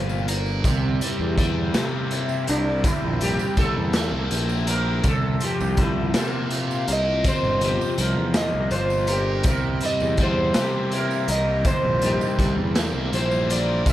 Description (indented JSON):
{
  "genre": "psychedelic rock",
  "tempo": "54 BPM (dotted quarters)",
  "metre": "6/8",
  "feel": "straight",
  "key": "unclear",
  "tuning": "A4 = 440 Hz",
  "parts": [
    { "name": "biting overdriven guitar", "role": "riff", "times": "0.0-13.9 s", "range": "C3 to Bb4", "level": "-26 LUFS", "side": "left 1 dB", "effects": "phaser" },
    { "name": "fuzz picked electric bass", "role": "bass", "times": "0.0-13.9 s", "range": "G1 to C3", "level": "-25 LUFS", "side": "equal", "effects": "overdrive" },
    { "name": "tambourine", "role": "percussion", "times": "0.1-13.9 s", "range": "none", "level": "-42 LUFS", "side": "right 13 dB", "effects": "none" },
    { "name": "raw garage drum kit", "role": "drums", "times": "0.3-13.9 s", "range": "hi-hat, kick drum, snare drum", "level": "-25 LUFS", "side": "equal", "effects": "none" },
    { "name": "combo organ", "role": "sustained chords", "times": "0.7-13.9 s", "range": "E3 to G4", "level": "-35 LUFS", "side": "right 3 dB", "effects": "none" },
    { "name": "sitar", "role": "melody", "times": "2.5-13.9 s", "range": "Bb3 to E5", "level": "-26 LUFS", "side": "right 1 dB", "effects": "analog delay" }
  ],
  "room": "light reverb, small room ambience",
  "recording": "none",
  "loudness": "-20 LUFS",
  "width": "side -13 dB against mid",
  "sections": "0.0-13.9 A section",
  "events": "sitar solo 0.0-13.9",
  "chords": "0.0 Bbsus2; 0.7 C7; 5.1 Bbsus2/C; 9.5 C7",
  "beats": "| 0.66 1.76 | 2.85 3.95 | 5.05 6.15 | 7.25 8.35 | 9.46 10.56 | 11.66 12.76 | 13.87"
}